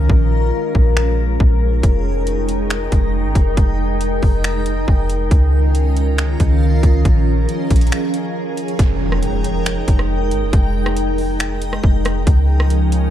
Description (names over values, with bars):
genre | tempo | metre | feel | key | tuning
hip hop, atmospheric cloud-rap | 138 BPM | 4/4 | half-time | F minor | A4 = 440 Hz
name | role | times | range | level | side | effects
glassy FM pad | sustained chords | 0.0-13.1 s | Eb3 to G5 | -21 LUFS | equal | ensemble chorus, built-in reverb
soft 808-style bass | bass | 0.0-13.1 s | F1 to Db2 | -17 LUFS | equal | none
backwards swelling texture | texture | 0.0-13.1 s | F4 to Bb5 | -32 LUFS | equal | built-in reverb
trap drum kit | drums | 0.1-13.0 s | finger snaps, hi-hat, kick drum, rim click | -16 LUFS | equal | none
impact | sound effects | 8.8-10.5 s | none | -28 LUFS | equal | none
room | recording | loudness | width
digital ambience | dark, warm production | -14 LUFS | side -11 dB against mid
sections
0.0-8.8 A section; 8.8-13.1 B section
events
break 0.0-1.8, 7.9-8.8; impact 8.8-10.5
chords
0.1 Bbm7; 1.8 Fm11; 5.3 Db69; 7.1 Bbm7; 8.8 Fm11; 12.3 Db69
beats
| 0.10 0.53 0.96 1.40 | 1.83 2.27 2.70 3.14 | 3.57 4.01 4.44 4.88 | 5.31 5.75 6.18 6.62 | 7.05 7.49 7.92 8.36 | 8.79 9.23 9.66 10.10 | 10.53 10.96 11.40 11.83 | 12.27 12.70